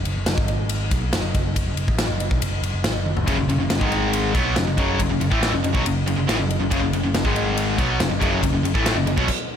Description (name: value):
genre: hard rock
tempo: 140 BPM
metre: 4/4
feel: straight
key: F# minor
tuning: A4 = 439 Hz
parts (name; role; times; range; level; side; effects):
- overdriven picked electric bass; bass; 0.0-9.3 s; F#1 to B1; -25 LUFS; equal; none
- big rock drum kit; drums; 0.1-9.4 s; crash cymbal, kick drum, ride cymbal, snare drum, toms; -23 LUFS; equal; none
- cranked stack guitar; riff; 3.3-9.3 s; F#2 to B3; -24 LUFS; left 10 dB; overdrive
- distorted electric guitar; riff; 3.3-9.3 s; F#2 to B3; -24 LUFS; right 10 dB; overdrive
room: light reverb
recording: none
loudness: -19 LUFS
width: side -8 dB against mid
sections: 0.0-9.6 A section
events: drum fill 3.1; stop 9.3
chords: 0.4 N.C.; 0.9 F#5; 3.8 G#5; 4.4 F#m; 7.2 G#5; 7.8 F#m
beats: 0.27 0.70 1.13 | 1.56 1.99 2.42 2.85 | 3.28 3.71 4.14 4.57 | 5.00 5.42 5.85 6.28 | 6.71 7.14 7.57 8.00 | 8.42 8.85 9.28